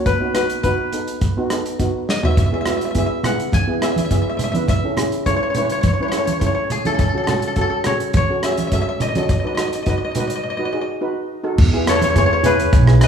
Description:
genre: calypso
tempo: 104 BPM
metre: 4/4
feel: straight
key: E major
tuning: A4 = 440 Hz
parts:
  - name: koto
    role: melody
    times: 0.0-13.1 s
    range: F#4 to G#5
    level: -22 LUFS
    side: left 3 dB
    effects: none
  - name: steel pan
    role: accompaniment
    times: 0.0-13.1 s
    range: B3 to B4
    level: -22 LUFS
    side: right 2 dB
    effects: none
  - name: upright bass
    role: bass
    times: 0.0-13.1 s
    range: B1 to F#2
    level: -16 LUFS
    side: right 1 dB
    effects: none
  - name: warm soul drum kit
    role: drums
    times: 0.1-13.1 s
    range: crash cymbal, hi-hat, kick drum, rim click, snare drum, toms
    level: -20 LUFS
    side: equal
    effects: none
  - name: congas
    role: percussion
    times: 2.4-12.6 s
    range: none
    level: -26 LUFS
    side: right 2 dB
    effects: none
room: moderate recital hall reverb, RT60 1.4 s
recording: recorded in a church or concert hall, small room ambience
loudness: -16 LUFS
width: side -7 dB against mid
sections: 0.0-11.6 A section; 11.6-13.1 B section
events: drum fill 2.1; break 10.4-11.6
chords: 0.1 B; 2.4 E; 4.7 A; 7.0 F#m; 9.3 B; 11.6 Emaj7

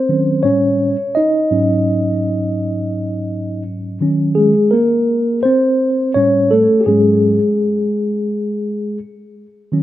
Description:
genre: hip hop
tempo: 84 BPM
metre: 4/4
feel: swing 62% on 16ths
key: unclear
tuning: A4 = 442 Hz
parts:
  - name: mellow tine electric piano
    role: solo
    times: 0.0-9.8 s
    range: Ab2 to Eb5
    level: -13 LUFS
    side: equal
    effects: fast stereo tremolo
room: wet studio ambience, RT60 0.5 s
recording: rough home demo mix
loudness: -13 LUFS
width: side -14 dB against mid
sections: 0.0-9.8 A section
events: tine electric piano solo 0.0-9.8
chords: 0.4 A7; 1.2 Ab7sus4; 4.0 Ebm7; 6.2 A7; 6.9 Ab7sus4

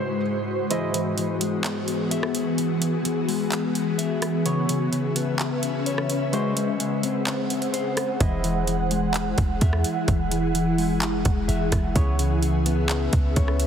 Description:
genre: hip hop, atmospheric cloud-rap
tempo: 128 BPM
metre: 4/4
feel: half-time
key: E major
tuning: A4 = 441 Hz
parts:
  - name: ethereal airy pad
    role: sustained chords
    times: 0.0-13.7 s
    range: G#2 to F#5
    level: -25 LUFS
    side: equal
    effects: ensemble chorus, built-in reverb, sidechain pumping
  - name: kora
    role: texture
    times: 0.0-13.7 s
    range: G#3 to D#5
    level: -36 LUFS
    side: right 1 dB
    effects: none
  - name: mellow electric guitar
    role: arpeggios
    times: 0.7-13.7 s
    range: C#3 to E5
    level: -28 LUFS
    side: left 5 dB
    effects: spring reverb, digital delay
  - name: trap drum kit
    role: drums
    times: 0.7-13.7 s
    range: handclaps, hi-hat, kick drum, rim click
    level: -28 LUFS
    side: right 1 dB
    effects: none
  - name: clean 808-style bass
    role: bass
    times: 8.2-13.7 s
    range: E1 to E2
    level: -24 LUFS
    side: equal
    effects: none
room: light reverb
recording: heavily compressed radio sound, multiband compression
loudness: -21 LUFS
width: side -8 dB against mid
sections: 0.7-13.7 A section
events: kick muted 0.7-8.2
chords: 0.0 G#7; 0.7 Emaj7; 4.5 C#m7; 6.3 G#7; 8.2 Emaj7; 12.0 C#m7

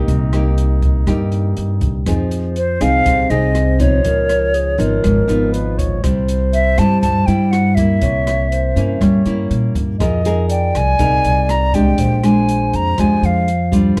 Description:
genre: bossa nova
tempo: 121 BPM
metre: 4/4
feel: straight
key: C minor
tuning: A4 = 441 Hz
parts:
  - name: nylon-string guitar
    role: accompaniment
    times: 0.0-14.0 s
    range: G2 to Bb4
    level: -20 LUFS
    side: equal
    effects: none
  - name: warm brass ensemble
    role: sustained chords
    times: 0.0-2.0 s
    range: C3 to Eb4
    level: -32 LUFS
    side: equal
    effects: none
  - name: upright bass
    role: bass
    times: 0.0-14.0 s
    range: Ab1 to Bb2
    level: -20 LUFS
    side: equal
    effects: none
  - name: open jazz drum kit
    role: drums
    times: 0.1-14.0 s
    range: hi-hat, kick drum, rim click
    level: -25 LUFS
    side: equal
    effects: none
  - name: mellow reedy alto flute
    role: second line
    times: 2.1-14.0 s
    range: Ab4 to Eb5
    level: -26 LUFS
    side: equal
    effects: none
  - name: hollow concert flute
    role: melody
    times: 2.6-13.7 s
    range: C5 to Bb5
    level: -21 LUFS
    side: equal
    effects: none
room: light reverb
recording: dark, warm production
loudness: -16 LUFS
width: mono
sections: 0.0-2.1 A section; 2.1-14.0 B section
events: none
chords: 0.0 Cm7; 2.1 Fm7; 4.0 Db9; 6.0 C; 8.0 C7b9; 10.0 Fm11; 12.0 Bb13

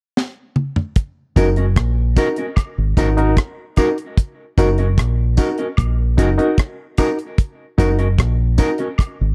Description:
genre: roots reggae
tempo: 75 BPM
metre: 4/4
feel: straight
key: F# major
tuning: A4 = 440 Hz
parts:
  - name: deep reggae drum kit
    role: drums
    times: 0.2-9.2 s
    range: hi-hat, kick drum, rim click, snare drum, toms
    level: -17 LUFS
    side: equal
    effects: none
  - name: mellow electric guitar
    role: accompaniment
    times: 1.4-8.9 s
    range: C#4 to D#5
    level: -25 LUFS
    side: equal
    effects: tape echo
  - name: bright reed electric piano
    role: stabs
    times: 1.4-8.8 s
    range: D#4 to A#4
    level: -22 LUFS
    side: equal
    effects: fast tremolo
  - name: deep dub fingered electric bass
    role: bass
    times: 1.4-9.3 s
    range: F#1 to A#1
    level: -19 LUFS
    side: equal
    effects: none
  - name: tambourine and woodblock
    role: percussion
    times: 1.4-9.2 s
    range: none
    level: -35 LUFS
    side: equal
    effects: none
room: small room ambience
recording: dry, close 1970s-style studio recording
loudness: -18 LUFS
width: mono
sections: 1.0-9.3 A section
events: drum fill 0.2-1.0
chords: 0.0 N.C.; 1.0 F#6

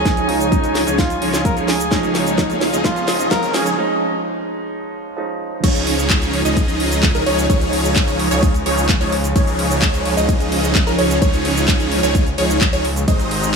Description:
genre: EDM, festival progressive house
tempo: 129 BPM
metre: 4/4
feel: straight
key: Db major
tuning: A4 = 442 Hz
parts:
  - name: trumpet with bucket mute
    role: melody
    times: 0.0-3.8 s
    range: Eb4 to Bb4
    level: -23 LUFS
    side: equal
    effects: tape echo
  - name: dark baby grand piano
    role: accompaniment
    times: 0.0-5.7 s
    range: F3 to Eb4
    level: -24 LUFS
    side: right 5 dB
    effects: sidechain pumping, tape echo
  - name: warm studio string section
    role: sustained chords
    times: 0.0-13.6 s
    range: C3 to Ab5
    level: -27 LUFS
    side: left 2 dB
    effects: sidechain pumping
  - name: supersaw chords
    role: riff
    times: 0.0-13.6 s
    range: F3 to Eb5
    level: -20 LUFS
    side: right 1 dB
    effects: phaser, sidechain pumping, low-pass filter, tape echo
  - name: detuned saw bass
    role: bass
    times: 0.0-13.6 s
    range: Ab1 to Db2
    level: -24 LUFS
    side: equal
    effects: sidechain pumping
  - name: riser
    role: sound effects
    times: 1.2-3.8 s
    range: none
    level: -30 LUFS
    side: left 1 dB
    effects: none
  - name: electronic kick drum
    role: drums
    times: 0.1-13.2 s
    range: none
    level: -18 LUFS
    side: equal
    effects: none
  - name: house drum kit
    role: drums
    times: 0.1-13.5 s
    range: cabasa, crash cymbal, handclaps, hi-hat, ride cymbal, snare drum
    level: -23 LUFS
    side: equal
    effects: none
  - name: wide unison pluck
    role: arpeggios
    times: 5.6-13.6 s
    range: Bb4 to Eb5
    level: -24 LUFS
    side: right 1 dB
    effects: sidechain pumping, tape echo
room: light reverb, digital ambience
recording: high-pass filter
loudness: -15 LUFS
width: side -5 dB against mid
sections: 0.0-5.6 A section; 5.6-13.6 B section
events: build-up 0.0-5.6; drum fill 0.0-3.8; filter sweep on supersaw synth 0.0-5.6; filter sweep 0.0-5.6; break 3.8-5.6; drop 5.6-13.6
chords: 0.0 Dbadd9

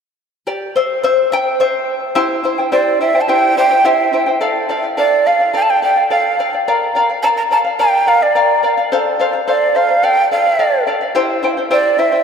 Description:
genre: andean folk, Andean ensemble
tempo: 107 BPM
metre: 2/4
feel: straight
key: unclear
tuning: A4 = 440 Hz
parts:
  - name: charango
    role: accompaniment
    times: 0.5-12.2 s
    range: E4 to G5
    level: -15 LUFS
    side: left 3 dB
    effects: none
  - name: breathy mellow large quena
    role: melody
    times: 2.7-12.2 s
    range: D5 to Bb5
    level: -14 LUFS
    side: right 2 dB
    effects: none
room: wet cathedral reverb, RT60 5.7 s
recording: in a vast, echoing space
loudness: -12 LUFS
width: side -6 dB against mid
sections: 0.0-2.2 A section; 2.2-11.1 B section; 11.1-12.2 B section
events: charango solo 0.0-2.2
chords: 0.0 C; 4.4 Dm; 6.7 Bb; 8.9 F; 10.0 Dm; 11.1 C

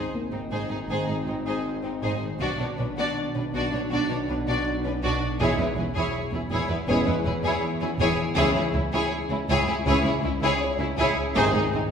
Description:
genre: cinematic, suspense film score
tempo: 80 BPM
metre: 4/4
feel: straight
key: C# phrygian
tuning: A4 = 440 Hz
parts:
  - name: warm studio violin section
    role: melody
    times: 0.0-11.8 s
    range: D#4 to D5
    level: -31 LUFS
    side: left 2 dB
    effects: none
  - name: rich studio violin section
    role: second line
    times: 0.0-11.8 s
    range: B#3 to G#4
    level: -30 LUFS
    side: left 2 dB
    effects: none
  - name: warm studio viola section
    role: accompaniment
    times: 0.0-11.8 s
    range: D4 to E4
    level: -30 LUFS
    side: right 2 dB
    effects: none
  - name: mellow French horn section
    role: sustained chords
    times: 0.0-11.6 s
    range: B2 to D#4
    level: -31 LUFS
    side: left 1 dB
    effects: none
  - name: dark studio cello section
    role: bass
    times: 0.0-11.8 s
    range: C#2 to B2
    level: -31 LUFS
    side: right 2 dB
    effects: none
  - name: bowed-like drone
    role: drone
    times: 0.0-11.9 s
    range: G#1 to E2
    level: -33 LUFS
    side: equal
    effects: built-in reverb
  - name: felt-muted upright piano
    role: texture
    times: 0.1-11.9 s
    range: A#3 to C#5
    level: -37 LUFS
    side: left 1 dB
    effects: none
  - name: warm studio double bass section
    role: bass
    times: 0.5-11.8 s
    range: E1 to C#2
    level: -31 LUFS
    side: right 2 dB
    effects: none
room: wet recital hall reverb, RT60 1.4 s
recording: heard from further back in the room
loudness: -23 LUFS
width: side -7 dB against mid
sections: 0.0-11.9 A section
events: none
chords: 0.0 G#; 2.4 Bm; 5.4 E6; 8.4 C#m; 11.4 G#

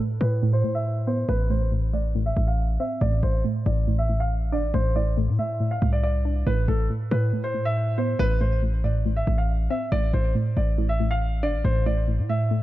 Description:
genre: hip hop, drill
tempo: 139 BPM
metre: 4/4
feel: half-time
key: A minor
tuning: A4 = 441 Hz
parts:
  - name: soft round pluck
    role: accompaniment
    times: 0.0-12.6 s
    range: A2 to D4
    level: -27 LUFS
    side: equal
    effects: chorus, low-pass filter
  - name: dark concert grand piano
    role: melody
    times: 0.2-12.6 s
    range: A4 to F5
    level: -29 LUFS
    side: right 1 dB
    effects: low-pass filter, digital delay
  - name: hard-hitting 808-style bass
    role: bass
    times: 0.2-12.6 s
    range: G1 to A2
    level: -24 LUFS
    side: equal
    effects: none
room: small room ambience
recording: dark, warm production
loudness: -21 LUFS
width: side -15 dB against mid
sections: 0.0-12.6 A section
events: filter sweep 0.0-6.5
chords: 0.0 Asus2; 1.3 Am; 3.0 N.C.; 4.7 D5/A; 6.5 Asus2; 8.2 Am; 9.9 N.C.

